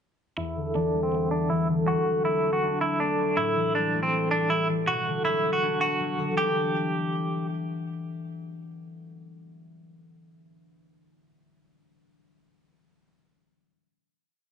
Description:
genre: hip hop.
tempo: 160 BPM.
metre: 4/4.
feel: half-time.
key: E minor.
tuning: A4 = 440 Hz.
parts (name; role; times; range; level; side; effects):
clean electric guitar; melody; 0.4-7.5 s; C4 to G4; -27 LUFS; right 2 dB; tremolo, low-pass filter, plate reverb, digital delay.
concert harp; accompaniment; 0.4-10.2 s; E2 to D4; -27 LUFS; left 1 dB; low-pass filter.
room: moderate studio reverb, RT60 0.5 s.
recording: dark, warm production, nothing above 10.6 kHz.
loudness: -24 LUFS.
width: side -7 dB against mid.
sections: 0.4-6.4 breakdown; 6.4-9.4 final chord.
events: filter sweep 0.4-6.4.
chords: 0.4 Em7; 1.9 D7; 3.4 Am7; 4.9 Bm; 6.4 Em7.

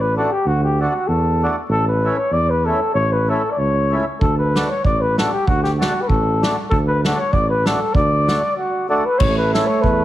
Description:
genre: alpine folk, alpine dance band.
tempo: 96 BPM.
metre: 2/4.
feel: swing 54% on 8ths, rubato.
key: D major.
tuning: A4 = 439 Hz.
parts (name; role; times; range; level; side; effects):
mellow flugelhorn; melody; 0.0-10.0 s; F#4 to D5; -19 LUFS; left 1 dB; none.
mellow tuba; bass; 0.0-10.0 s; A1 to E2; -20 LUFS; right 1 dB; none.
mellow accordion; accompaniment; 0.2-9.7 s; A3 to F#4; -24 LUFS; equal; none.
natural country drum kit; drums; 4.2-10.0 s; crash cymbal, kick drum, snare drum; -21 LUFS; right 1 dB; none.
clear euphonium; second line; 9.2-10.0 s; A3; -20 LUFS; right 4 dB; none.
room: light reverb.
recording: heavily compressed radio sound, multiband compression.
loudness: -16 LUFS.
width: side -14 dB against mid.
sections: 0.0-9.2 A section.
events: break 8.6-9.2.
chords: 0.0 D; 1.7 A; 4.2 D; 9.2 A.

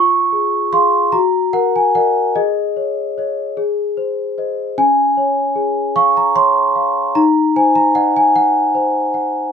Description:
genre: classical, lullaby for celesta.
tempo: 50 BPM (dotted quarters).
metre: 6/8.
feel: straight.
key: Db major.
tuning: A4 = 440 Hz.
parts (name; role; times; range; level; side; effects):
large celesta; solo; 0.0-9.5 s; Db4 to Db6; -13 LUFS; equal; none.
room: moderate small room reverb, RT60 0.6 s.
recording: none.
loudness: -13 LUFS.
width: side -7 dB against mid.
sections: 0.0-9.5 A section.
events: none.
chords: 0.0 Db/F; 1.1 Ebm/Gb; 2.4 Absus4; 3.6 Ab; 4.8 Db; 7.2 Cdim/Eb.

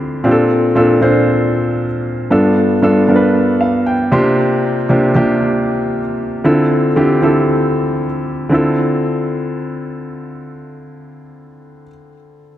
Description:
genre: amapiano.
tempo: 116 BPM.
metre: 4/4.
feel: swing 58% on 16ths.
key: D minor.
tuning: A4 = 439 Hz.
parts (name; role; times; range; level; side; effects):
warm grand piano; solo; 0.0-12.6 s; G2 to C6; -12 LUFS; equal; ping-pong delay.
room: light reverb, studio reverb.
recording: none.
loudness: -12 LUFS.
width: side -12 dB against mid.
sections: 0.0-8.5 A section; 8.5-12.6 B section.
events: grand piano fill 3.3-4.4.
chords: 0.2 Bbmaj7; 2.3 G7; 4.1 C7sus4; 6.4 Dm7.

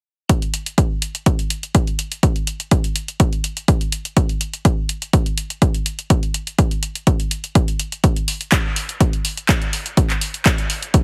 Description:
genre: piano house.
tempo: 124 BPM.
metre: 4/4.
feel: straight.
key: none.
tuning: none.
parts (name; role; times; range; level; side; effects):
electronic kick drum; drums; 0.3-11.0 s; none; -19 LUFS; equal; none.
punchy analog drum machine; drums; 0.3-11.0 s; handclaps, hi-hat; -25 LUFS; equal; none.
room: little or no reverb.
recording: heavily compressed radio sound.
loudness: -20 LUFS.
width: mono.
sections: 0.3-11.0 A section.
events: none.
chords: none.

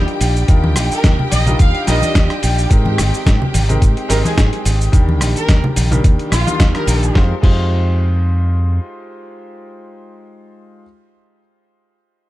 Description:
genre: nu-disco, nu disco.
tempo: 108 BPM.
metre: 4/4.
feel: swing 55% on 16ths.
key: F dorian.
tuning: A4 = 443 Hz.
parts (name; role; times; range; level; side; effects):
warm studio violin section; melody; 0.0-7.2 s; F4 to F5; -24 LUFS; right 1 dB; vintage 12-bit sampler grit, ping-pong delay.
bright grand piano; accompaniment; 0.0-10.8 s; Eb3 to Eb5; -24 LUFS; left 1 dB; vintage 12-bit sampler grit, sidechain pumping, ping-pong delay.
warm symphonic string section; sustained chords; 0.0-7.2 s; G4 to G5; -26 LUFS; equal; sidechain pumping.
fingered electric bass with an envelope filter; bass; 0.0-8.8 s; Ab1 to Ab2; -16 LUFS; equal; none.
dusty soul sampler-style drum kit; drums; 0.1-7.6 s; crash cymbal, hi-hat, rim click, shaker, snare drum; -21 LUFS; equal; none.
electronic kick drum; drums; 0.5-7.6 s; none; -12 LUFS; equal; none.
congas; percussion; 0.6-6.6 s; none; -22 LUFS; left 1 dB; none.
room: small room ambience.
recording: dark, warm production.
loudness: -12 LUFS.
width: side -16 dB against mid.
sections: 0.0-7.2 A section; 7.2-9.4 B section.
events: drop 0.0-7.2.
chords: 0.0 Ebmaj9; 2.7 Abmaj9; 4.9 Ebmaj7; 7.2 Fm9.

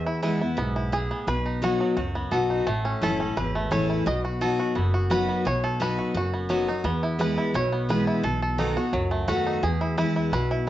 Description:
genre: bluegrass.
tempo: 172 BPM.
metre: 4/4.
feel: straight.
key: E major.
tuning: A4 = 436 Hz.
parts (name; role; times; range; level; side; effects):
bluegrass banjo; melody; 0.0-10.7 s; F#3 to D#5; -28 LUFS; right 2 dB; cassette tape, plate reverb.
picked steel-string acoustic guitar; accompaniment; 0.0-10.7 s; E2 to F#4; -25 LUFS; left 1 dB; none.
upright bass; bass; 0.0-10.7 s; F#1 to E2; -30 LUFS; right 1 dB; none.
room: moderate studio reverb, RT60 0.6 s.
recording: home recording on cassette, nothing above 7.7 kHz.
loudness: -23 LUFS.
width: side -13 dB against mid.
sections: 0.0-10.7 A section.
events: five-string banjo solo 0.0-10.7.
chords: 0.0 E; 1.3 B; 2.7 A; 4.1 B; 6.8 E; 8.2 B7; 9.6 E.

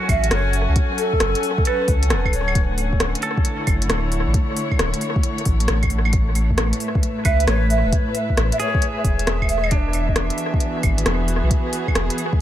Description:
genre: future garage.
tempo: 134 BPM.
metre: 4/4.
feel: swing 67% on 16ths.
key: unclear.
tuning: A4 = 442 Hz.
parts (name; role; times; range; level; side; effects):
twangy electric guitar; accompaniment; 0.0-11.3 s; C#4 to B4; -30 LUFS; right 4 dB; sidechain pumping, dub echo.
warm chamber string section; sustained chords; 0.0-12.4 s; A2 to G#5; -26 LUFS; left 1 dB; sidechain pumping.
breathy mellow jazz flute; melody; 0.1-2.6, 7.2-9.8 s; A4 to E5; -25 LUFS; right 1 dB; tape echo.
warm sub bass; bass; 0.1-12.1 s; D1 to C#2; -21 LUFS; equal; sidechain pumping.
electronic kick drum; drums; 0.1-12.4 s; none; -20 LUFS; equal; overdrive.
organic electronic drum kit; drums; 0.1-12.3 s; claves, hi-hat, rim click; -25 LUFS; equal; overdrive, dub echo.
room: light reverb.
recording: echo-heavy mix.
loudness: -17 LUFS.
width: side -12 dB against mid.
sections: 0.0-12.4 A section.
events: none.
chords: 0.0 Dmaj7; 6.1 Aadd9; 9.7 Eadd9.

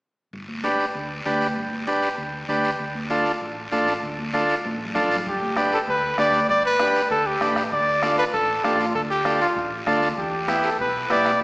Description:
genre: latin, cumbia.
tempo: 195 BPM.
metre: 4/4.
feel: straight.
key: unclear.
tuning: A4 = 441 Hz.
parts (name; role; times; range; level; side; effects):
hollow-body short-scale fingered electric bass; bass; 0.3-11.4 s; G1 to E2; -37 LUFS; equal; none.
congas; percussion; 0.3-11.4 s; none; -33 LUFS; equal; none.
guiro; percussion; 0.3-11.4 s; none; -34 LUFS; equal; none.
combo organ; accompaniment; 0.6-11.3 s; B3 to B4; -23 LUFS; equal; none.
warm trumpet; melody; 5.3-11.4 s; F4 to D5; -21 LUFS; equal; none.
bombo; percussion; 5.3-11.4 s; none; -33 LUFS; equal; none.
room: wet concert hall reverb, RT60 2.1 s.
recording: recorded in a church or concert hall, small speaker sound.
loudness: -20 LUFS.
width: side -27 dB against mid.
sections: 0.3-5.3 A section; 5.3-11.4 B section.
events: drum fill 4.6-5.3.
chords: 0.3 G; 2.8 Dm; 5.3 G; 7.7 Dm; 10.2 Em.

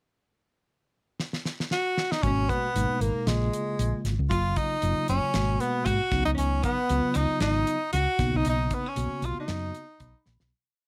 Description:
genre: electric jazz fusion.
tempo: 116 BPM.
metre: 4/4.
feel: swing 55% on 16ths.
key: unclear.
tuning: A4 = 440 Hz.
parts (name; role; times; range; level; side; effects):
damped 70s drum kit; drums; 1.2-10.5 s; hi-hat, kick drum, snare drum; -34 LUFS; equal; none.
bright tenor saxophone; melody; 1.7-10.2 s; G#3 to F#4; -31 LUFS; equal; none.
mellow tine electric piano; accompaniment; 2.2-10.5 s; B2 to B5; -35 LUFS; equal; none.
hollow-body short-scale fingered electric bass; bass; 2.2-10.5 s; F#1 to G#2; -30 LUFS; equal; none.
vintage hollow-body jazz guitar; second line; 2.3-10.2 s; G#3 to F#4; -37 LUFS; equal; none.
room: light reverb.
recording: none.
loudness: -27 LUFS.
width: mono.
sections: 0.2-2.2 pickup bar; 2.2-10.5 A section.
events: drum fill 1.2-2.2, 10.3; fade-out 8.5-10.5; tine electric piano fill 9.8-10.5.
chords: 0.2 N.C.; 2.2 G#m9; 3.3 A#m7; 4.3 F#maj7; 5.3 G#m9; 6.1 C#9sus4; 8.2 Bmaj9.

